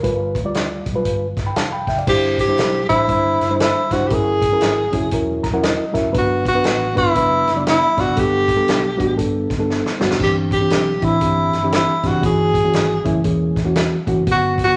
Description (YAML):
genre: uptempo 1960s-style soul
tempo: 118 BPM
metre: 4/4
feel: swing 62% on 8ths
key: unclear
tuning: A4 = 440 Hz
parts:
  - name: mellow reed electric piano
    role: accompaniment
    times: 0.0-14.8 s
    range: D3 to B5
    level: -22 LUFS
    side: equal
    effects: none
  - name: vintage muted fingered electric bass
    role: bass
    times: 0.0-14.7 s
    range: E1 to D2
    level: -29 LUFS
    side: equal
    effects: none
  - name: vintage drum kit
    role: drums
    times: 0.0-14.7 s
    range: crash cymbal, hi-hat, kick drum, snare drum, splash cymbal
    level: -25 LUFS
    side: equal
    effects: none
  - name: breathy tenor saxophone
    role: melody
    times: 2.1-14.8 s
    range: E4 to Ab4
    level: -20 LUFS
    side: equal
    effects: none
room: moderate large studio reverb, RT60 1.3 s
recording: nothing above 10.5 kHz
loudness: -18 LUFS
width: mono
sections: 0.0-2.1 A section; 2.1-14.8 B section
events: reed electric piano fill 5.1-6.1; drum fill 9.7-10.2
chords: 0.0 G7; 2.1 Cadd9/G; 4.1 F#7; 6.1 Gadd9; 10.2 Cadd9/G; 12.2 F#7